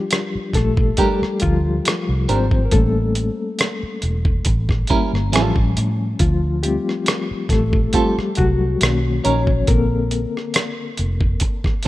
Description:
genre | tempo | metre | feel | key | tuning
R&B, neo-soul | 69 BPM | 4/4 | swing 53% on 16ths | unclear | A4 = 440 Hz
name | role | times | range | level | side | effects
reed electric piano | accompaniment | 0.0-11.9 s | D3 to C#5 | -22 LUFS | left 3 dB | fast tremolo
dusty soul sampler-style drum kit | drums | 0.1-11.9 s | hi-hat, kick drum, rim click | -20 LUFS | equal | none
vintage muted fingered electric bass | bass | 0.4-11.7 s | E1 to A2 | -20 LUFS | equal | none
clean electric guitar | second line | 1.0-11.9 s | F#3 to Bb4 | -23 LUFS | right 5 dB | tremolo
room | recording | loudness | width
light reverb, digital ambience | rough home demo mix | -16 LUFS | side -16 dB against mid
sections
0.0-11.9 A section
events
reed electric piano solo 0.0-11.9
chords
0.0 Ebmaj7 (rootless); 2.7 A7b9; 5.3 A7b13; 6.2 Dm7; 8.8 Bmaj9; 9.7 Bbmaj9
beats
0.11 0.98 1.85 | 2.72 3.59 4.46 5.33 | 6.20 7.07 7.93 8.80 | 9.67 10.54 11.41

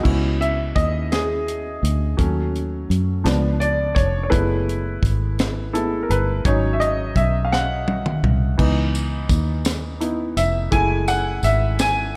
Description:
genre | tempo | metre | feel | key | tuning
slow gospel | 56 BPM (dotted quarters) | 6/8 | straight | C# minor | A4 = 440 Hz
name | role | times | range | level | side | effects
clear baby grand piano | accompaniment | 0.0-12.2 s | E3 to G#5 | -25 LUFS | equal | none
fingered electric bass | bass | 0.0-12.2 s | E#1 to F#2 | -24 LUFS | equal | none
tight funk drum kit | drums | 0.1-12.0 s | crash cymbal, hi-hat, kick drum, snare drum, toms | -25 LUFS | equal | none
tambourine | percussion | 8.9-12.1 s | none | -38 LUFS | equal | none
room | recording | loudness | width
light reverb | none | -21 LUFS | mono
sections
0.0-12.2 A section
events
grand piano solo 0.0-12.2; drum fill 7.5-8.6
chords
0.0 C#m9; 2.2 D#m7b5; 3.2 C#7b9; 4.3 F#m11; 6.5 G#7sus4; 8.6 C#m9; 10.7 F#m9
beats
| 0.05 1.11 | 2.18 3.25 | 4.32 5.38 | 6.45 7.52 | 8.59 9.65 | 10.72 11.79

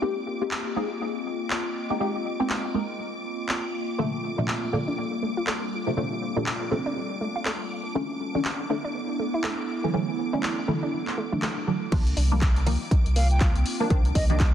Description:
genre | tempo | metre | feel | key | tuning
deep house | 121 BPM | 4/4 | swing 59% on 16ths | C minor | A4 = 439 Hz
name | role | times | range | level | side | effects
filtered dub chord stab | stabs | 0.0-14.5 s | Bb2 to Bb4 | -29 LUFS | equal | phaser, analog chorus, vintage 12-bit sampler grit, sidechain pumping, tape echo
analog string pad | texture | 0.0-14.5 s | D6 | -39 LUFS | right 1 dB | ensemble chorus, sidechain pumping
warbly tape-like pad | texture | 0.0-14.5 s | G3 to Eb5 | -32 LUFS | left 1 dB | chorus, built-in reverb, phaser, sidechain pumping
punchy analog drum machine | drums | 0.5-14.5 s | crash cymbal, handclaps, hi-hat | -32 LUFS | equal | vintage 12-bit sampler grit
analog pluck | arpeggios | 4.0-14.3 s | A3 to F4 | -33 LUFS | right 2 dB | chorus, sidechain pumping, tape echo
warm sub bass | bass | 11.9-14.5 s | C2 | -23 LUFS | equal | tube saturation, sidechain pumping
electronic kick drum | drums | 11.9-14.5 s | none | -22 LUFS | equal | vintage 12-bit sampler grit
silver concert flute | melody | 13.2-14.4 s | Eb5 to G5 | -32 LUFS | equal | tape echo
room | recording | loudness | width
moderate plate reverb, RT60 2.2 s | dense, heavily limited modern master | -24 LUFS | side -10 dB against mid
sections
0.0-11.9 A section; 11.9-14.5 B section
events
drop 11.9-14.5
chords
0.0 Fm11; 4.0 Gm11; 7.7 Bm11; 11.9 Cm11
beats
| 0.02 0.52 1.01 1.51 | 2.00 2.50 3.00 3.49 | 3.99 4.48 4.98 5.47 | 5.97 6.47 6.96 7.46 | 7.95 8.45 8.95 9.44 | 9.94 10.43 10.93 11.43 | 11.92 12.42 12.91 13.41 | 13.90 14.40

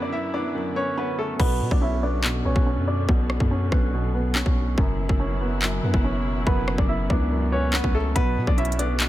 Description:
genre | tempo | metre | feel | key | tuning
hip hop, drill | 142 BPM | 4/4 | half-time | B minor | A4 = 437 Hz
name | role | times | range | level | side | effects
bright upright piano | melody | 0.0-3.1, 6.5-9.1 s | A3 to E5 | -28 LUFS | equal | low-pass filter, tape echo
felt-muted upright piano | accompaniment | 0.0-9.1 s | F#2 to E4 | -28 LUFS | right 1 dB | low-pass filter
warm symphonic string section | sustained chords | 0.0-9.1 s | B2 to E4 | -32 LUFS | left 1 dB | none
long sustained 808-style bass | bass | 1.4-9.1 s | F#1 to B2 | -25 LUFS | equal | none
drill drum kit | drums | 1.4-9.1 s | crash cymbal, handclaps, hi-hat, kick drum, rim click | -23 LUFS | equal | none
room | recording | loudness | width
small room ambience | none | -20 LUFS | side -14 dB against mid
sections
0.0-1.4 A section; 1.4-9.1 B section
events
hi-hats muted 1.4-8.2; filter sweep 1.4-8.2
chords
0.0 F#7sus4; 1.4 Bmadd9; 4.8 F#7sus4; 8.2 Bmadd9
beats
0.13 0.55 0.97 | 1.40 1.82 2.24 2.66 | 3.09 3.51 3.93 4.35 | 4.78 5.20 5.62 6.04 | 6.47 6.89 7.31 7.73 | 8.16 8.58 9.00

